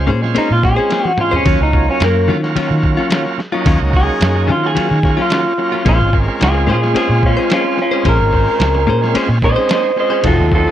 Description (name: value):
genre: straight-eighth soul blues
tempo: 109 BPM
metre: 4/4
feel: straight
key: Bb minor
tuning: A4 = 436 Hz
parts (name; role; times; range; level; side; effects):
- bright tonewheel organ; accompaniment; 0.0-10.7 s; Gb3 to C5; -21 LUFS; right 5 dB; slow rotary speaker, overdrive
- brilliant horn section; sustained chords; 0.0-10.7 s; Db4 to Db5; -28 LUFS; equal; none
- vintage muted fingered electric bass; bass; 0.0-10.7 s; F1 to Eb3; -15 LUFS; equal; none
- direct-recorded clean electric guitar; stabs; 0.1-10.6 s; Eb3 to C5; -19 LUFS; left 6 dB; none
- lo-fi sampler-style drum kit; drums; 0.2-10.7 s; kick drum, ride cymbal, snare drum, toms; -19 LUFS; equal; none
- electric guitar through a small old amp; melody; 0.4-10.7 s; Bb3 to Eb5; -16 LUFS; equal; warbly pitch drift, slapback echo
room: little or no reverb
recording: dry, close 1970s-style studio recording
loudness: -12 LUFS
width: side -11 dB against mid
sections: 0.0-10.7 A section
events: clean electric guitar solo 0.0-10.7; drum fill 0.9-1.5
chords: 0.0 Bbm9; 1.5 Ebm9; 5.9 Bbm9